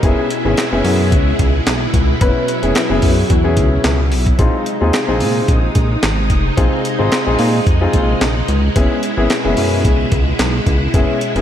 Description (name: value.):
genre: early-eighties boogie funk.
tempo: 110 BPM.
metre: 4/4.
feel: straight.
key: unclear.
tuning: A4 = 440 Hz.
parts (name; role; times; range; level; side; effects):
warm grand piano; accompaniment; 0.0-11.4 s; Cb4 to Cb5; -19 LUFS; left 2 dB; none.
string machine, violins; sustained chords; 0.0-11.4 s; Cb3 to Fb4; -20 LUFS; equal; ensemble chorus.
chorused synth bass; bass; 0.0-11.4 s; F1 to Bb2; -17 LUFS; equal; none.
breakbeat sampler-style drum kit; drums; 0.0-11.4 s; handclaps, hi-hat, kick drum, snare drum; -17 LUFS; equal; none.
room: moderate lush hall reverb, RT60 2.8 s.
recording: dreamy mix soaked in reverb.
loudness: -12 LUFS.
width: side -10 dB against mid.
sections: 0.0-11.4 A section.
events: none.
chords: 0.0 Gb9sus4; 4.4 Bb9sus4; 8.8 Gb9sus4.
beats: | 0.03 0.58 1.12 1.67 | 2.21 2.76 3.30 3.85 | 4.39 4.94 5.49 6.03 | 6.58 7.12 7.67 8.21 | 8.76 9.30 9.85 10.39 | 10.94.